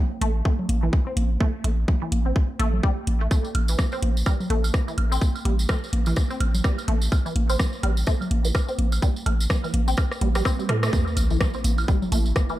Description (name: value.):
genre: minimal techno.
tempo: 126 BPM.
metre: 4/4.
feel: swing 59% on 16ths.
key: A minor.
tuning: A4 = 442 Hz.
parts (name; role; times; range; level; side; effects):
resonant blip pluck; riff; 0.2-12.5 s; E3 to C4; -30 LUFS; equal; phaser, sidechain pumping, digital delay.
punchy sub bass; bass; 0.2-12.3 s; A1 to A2; -22 LUFS; equal; sidechain pumping.
garage drum kit; drums; 0.2-12.5 s; hi-hat, rim click; -31 LUFS; equal; studio ambience.
congas and woodblock; percussion; 0.2-12.6 s; none; -31 LUFS; right 1 dB; studio ambience.
electronic kick drum; drums; 0.5-12.5 s; none; -22 LUFS; equal; overdrive, studio ambience.
tambourine; percussion; 3.3-12.6 s; none; -36 LUFS; right 3 dB; none.
sub drop; sound effects; 10.9-12.6 s; none; -31 LUFS; equal; none.
swarming drone; texture; 11.6-12.6 s; E4; -39 LUFS; right 2 dB; built-in reverb, sidechain pumping.
room: little or no reverb.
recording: dark, warm production.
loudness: -20 LUFS.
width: side -15 dB against mid.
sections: 0.0-10.9 A section; 10.9-12.6 B section.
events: drum fill 10.0-10.9; band accent 10.8; drop 10.9-12.6; impact 10.9-12.6.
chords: 0.0 N.C.; 10.9 A5.